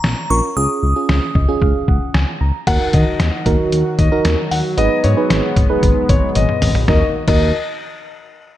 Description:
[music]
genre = synth-pop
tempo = 114 BPM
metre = 4/4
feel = straight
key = Eb minor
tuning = A4 = 441 Hz
[part]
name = glassy synth bell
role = melody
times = 0.0-2.1 s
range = Bb5 to Eb6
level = -22 LUFS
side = equal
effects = chorus, tape echo
[part]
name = smooth gliding synth bass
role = bass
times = 0.0-7.5 s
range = Ab1 to Eb3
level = -17 LUFS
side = equal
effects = none
[part]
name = trip hop sampler-style drum kit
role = drums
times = 0.0-7.4 s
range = crash cymbal, hi-hat, kick drum, snare drum, toms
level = -18 LUFS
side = equal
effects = gated reverb
[part]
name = mellow FM electric piano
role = accompaniment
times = 0.3-7.5 s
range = Db4 to Bb5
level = -20 LUFS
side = right 4 dB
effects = chorus, tremolo, low-pass filter
[part]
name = warm concert grand piano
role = second line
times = 2.7-7.5 s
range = Db5 to Gb5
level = -22 LUFS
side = left 4 dB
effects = tape echo
[part]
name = chorused pulse-width pad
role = sustained chords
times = 2.7-7.1 s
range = Eb3 to Gb4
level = -23 LUFS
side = left 1 dB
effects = low-pass filter
[sound]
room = light reverb, digital ambience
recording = none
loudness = -13 LUFS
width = side -13 dB against mid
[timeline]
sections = 0.0-2.7 A section; 2.7-6.9 B section; 6.9-8.6 C section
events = FM electric piano fill 1.1-2.7; drum fill 6.4-6.9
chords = 0.0 Bbm; 0.6 Dbadd9; 2.7 Ebm; 4.8 Abm; 6.9 Ebm

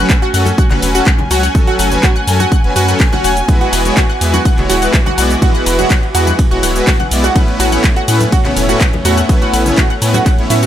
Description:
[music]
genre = progressive house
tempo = 124 BPM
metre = 4/4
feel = straight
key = unclear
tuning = A4 = 443 Hz
[part]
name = warm studio string section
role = sustained chords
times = 0.0-10.7 s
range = E3 to G#5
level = -21 LUFS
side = equal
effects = sidechain pumping
[part]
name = analog pluck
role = arpeggios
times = 0.0-10.7 s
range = E4 to F#5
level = -18 LUFS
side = right 1 dB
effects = analog chorus, sidechain pumping, dub echo
[part]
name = soft supersaw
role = stabs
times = 0.0-10.7 s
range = A2 to E5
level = -17 LUFS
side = left 1 dB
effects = sidechain pumping, dub echo
[part]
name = round analog bass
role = bass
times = 0.0-10.7 s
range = D1 to A2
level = -16 LUFS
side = equal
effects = sidechain pumping
[part]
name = electronic kick drum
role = drums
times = 0.1-10.4 s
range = none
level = -12 LUFS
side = equal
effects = none
[part]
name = house drum kit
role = drums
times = 0.1-10.7 s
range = handclaps, hi-hat, ride cymbal, shaker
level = -20 LUFS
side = left 1 dB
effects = none
[part]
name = congas and woodblock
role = percussion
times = 0.5-10.6 s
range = none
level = -25 LUFS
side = left 2 dB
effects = sidechain pumping on perc
[sound]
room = light reverb, digital ambience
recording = none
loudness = -10 LUFS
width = side -11 dB against mid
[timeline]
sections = 0.0-10.7 A section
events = none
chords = 0.0 Aadd9; 3.5 Eadd9; 7.4 Aadd9

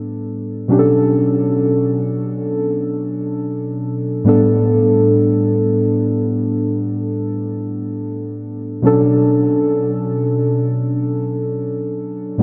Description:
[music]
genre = R&B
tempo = free time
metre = none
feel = none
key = B minor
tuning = A4 = 440 Hz
[part]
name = muted felt-like synth keys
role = accompaniment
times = 0.0-12.4 s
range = A2 to A4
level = -18 LUFS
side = equal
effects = chorus
[sound]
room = wet huge ambient reverb, RT60 4.7 s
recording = dreamy mix soaked in reverb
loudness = -17 LUFS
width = mono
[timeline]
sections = 0.0-12.4 A section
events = none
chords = 0.0 A7sus4; 0.7 Bm9; 4.3 A7sus4; 8.8 Bm9

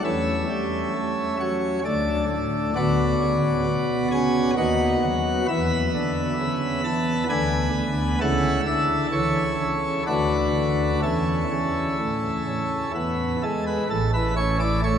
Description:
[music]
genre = classical, chorale-style piece for pipe organ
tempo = 65 BPM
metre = 3/4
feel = uneven beats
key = A major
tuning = A4 = 441 Hz
[part]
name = pipe organ, plenum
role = solo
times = 0.0-15.0 s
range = A1 to A5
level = -21 LUFS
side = equal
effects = none
[sound]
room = wet cathedral reverb, RT60 5.7 s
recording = heard from further back in the room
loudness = -21 LUFS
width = side -8 dB against mid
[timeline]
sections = 0.0-13.9 A section; 13.9-15.0 B section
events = none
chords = 0.0 A7/E; 1.9 D5; 2.8 Bm/D; 4.6 B/D#; 5.5 E5; 7.3 G#dim/D; 8.2 A/C#; 10.1 Bm/D; 11.0 A/E; 12.9 E; 13.9 A

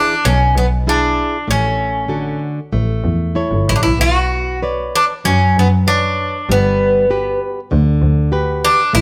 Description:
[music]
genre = fado-style ballad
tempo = 97 BPM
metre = 4/4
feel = rubato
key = unclear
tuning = A4 = 443 Hz
[part]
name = Greek bouzouki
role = melody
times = 0.0-9.0 s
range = B3 to F#4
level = -18 LUFS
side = equal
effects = none
[part]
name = flamenco guitar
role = accompaniment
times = 0.0-9.0 s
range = B2 to D5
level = -23 LUFS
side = equal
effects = none
[part]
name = clear double bass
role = bass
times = 0.2-9.0 s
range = G1 to F#2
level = -19 LUFS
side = equal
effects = none
[sound]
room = light reverb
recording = close, detailed microphones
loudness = -16 LUFS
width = mono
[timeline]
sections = 0.0-9.0 A section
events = none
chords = 0.0 E7; 1.5 D/A; 2.7 A; 4.0 Bmadd9; 6.5 Gmaj7

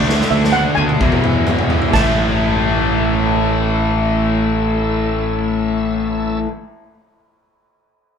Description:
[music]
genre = classic rock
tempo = 130 BPM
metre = 4/4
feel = straight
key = A major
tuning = A4 = 440 Hz
[part]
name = steel pan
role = melody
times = 0.0-6.5 s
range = D5 to A5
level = -20 LUFS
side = right 3 dB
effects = none
[part]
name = dark baby grand piano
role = accompaniment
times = 0.0-6.5 s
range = D4 to E5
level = -31 LUFS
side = right 3 dB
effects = none
[part]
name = picked twelve-string acoustic guitar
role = accompaniment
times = 0.0-6.6 s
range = E2 to A4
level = -31 LUFS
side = right 3 dB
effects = none
[part]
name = bright tonewheel organ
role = sustained chords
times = 0.0-6.4 s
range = A3 to E5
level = -30 LUFS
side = left 2 dB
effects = overdrive, chorus vibrato, slow rotary speaker
[part]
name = crunchy overdriven guitar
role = riff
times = 0.0-6.5 s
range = E2 to F#4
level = -25 LUFS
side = right 6 dB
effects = none
[part]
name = distorted electric guitar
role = riff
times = 0.0-6.5 s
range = E2 to D4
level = -24 LUFS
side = left 1 dB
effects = distortion
[part]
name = overdriven electric guitar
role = riff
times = 0.0-6.5 s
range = E2 to D4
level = -19 LUFS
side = left 6 dB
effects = spring reverb
[part]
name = growling fingered electric bass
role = bass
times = 0.0-6.4 s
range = A1 to E2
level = -20 LUFS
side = right 1 dB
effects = overdrive
[part]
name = raw garage drum kit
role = drums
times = 0.1-2.0 s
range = crash cymbal, kick drum, snare drum, toms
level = -20 LUFS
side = equal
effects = none
[sound]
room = moderate studio reverb, RT60 0.7 s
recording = band playing live in one room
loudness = -14 LUFS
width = side -7 dB against mid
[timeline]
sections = 0.0-1.9 A section; 1.9-5.6 B section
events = drum fill 0.1-1.9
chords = 0.0 D; 1.0 E; 1.9 A

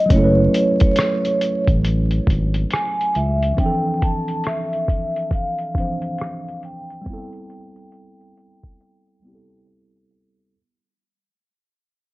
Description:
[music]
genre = lo-fi hip hop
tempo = 69 BPM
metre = 4/4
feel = swing 62% on 16ths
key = unclear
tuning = A4 = 440 Hz
[part]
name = vibraphone with medium mallets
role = melody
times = 0.0-9.6 s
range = C#5 to A5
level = -22 LUFS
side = right 1 dB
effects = low-pass filter, analog delay
[part]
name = tine electric piano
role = accompaniment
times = 0.0-10.6 s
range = E3 to C5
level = -24 LUFS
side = right 1 dB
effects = medium stereo tremolo, cassette tape, low-pass filter
[part]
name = smooth synth bass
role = bass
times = 0.1-3.5 s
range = F#1 to C#2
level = -18 LUFS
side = equal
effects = none
[part]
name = lo-fi sampler-style drum kit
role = drums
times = 0.1-10.5 s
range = hi-hat, kick drum, rim click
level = -20 LUFS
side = equal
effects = none
[sound]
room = light reverb, digital ambience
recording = vinyl crackle, low-pass filter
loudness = -17 LUFS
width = side -19 dB against mid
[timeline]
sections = 0.0-10.5 A section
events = fade-out 0.0-10.5; filter sweep 0.0-10.5; break 8.8-10.5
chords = 0.0 F#m9; 3.6 Dm9; 7.1 Am9

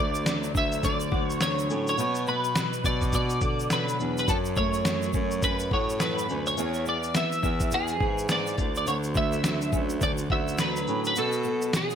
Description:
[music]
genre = acoustic pop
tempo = 105 BPM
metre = 4/4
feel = swing 60% on 16ths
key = unclear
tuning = A4 = 440 Hz
[part]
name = twelve-string electric guitar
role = melody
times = 0.0-12.0 s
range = G#4 to E5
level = -28 LUFS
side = equal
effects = ensemble chorus
[part]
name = flamenco guitar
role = accompaniment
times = 0.0-12.0 s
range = F#2 to G#4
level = -31 LUFS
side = right 1 dB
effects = double-tracked left and right
[part]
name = breathy baritone saxophone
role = bass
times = 0.0-11.7 s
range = D2 to D3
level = -31 LUFS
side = equal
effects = none
[part]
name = dusty soul sampler-style drum kit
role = drums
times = 0.1-12.0 s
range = kick drum, shaker, snare drum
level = -29 LUFS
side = equal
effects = overdrive, gated reverb
[part]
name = egg shaker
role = percussion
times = 0.1-12.0 s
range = none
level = -43 LUFS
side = right 6 dB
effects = none
[sound]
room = light reverb, small room ambience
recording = bright 1980s-style digital production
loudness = -24 LUFS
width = side -8 dB against mid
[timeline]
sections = 0.0-12.0 A section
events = none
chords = 0.0 Dmaj7; 2.0 Bm; 4.3 F#m; 6.6 E; 8.6 Dmaj7; 11.2 B5

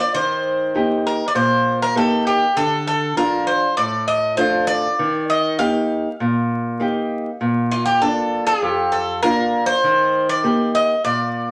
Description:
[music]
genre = greek folk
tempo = 99 BPM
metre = 4/4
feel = straight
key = unclear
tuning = A4 = 445 Hz
[part]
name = Greek bouzouki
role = melody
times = 0.0-11.5 s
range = F4 to F5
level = -21 LUFS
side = equal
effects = none
[part]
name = nylon-string guitar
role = accompaniment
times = 0.1-11.5 s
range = F2 to G4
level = -23 LUFS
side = equal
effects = none
[sound]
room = wet studio reverb, RT60 0.7 s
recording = vinyl crackle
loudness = -19 LUFS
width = mono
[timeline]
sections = 0.0-11.5 A section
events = none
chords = 0.1 Eb; 2.6 Dm; 5.0 Eb; 7.4 Bb; 9.8 Eb

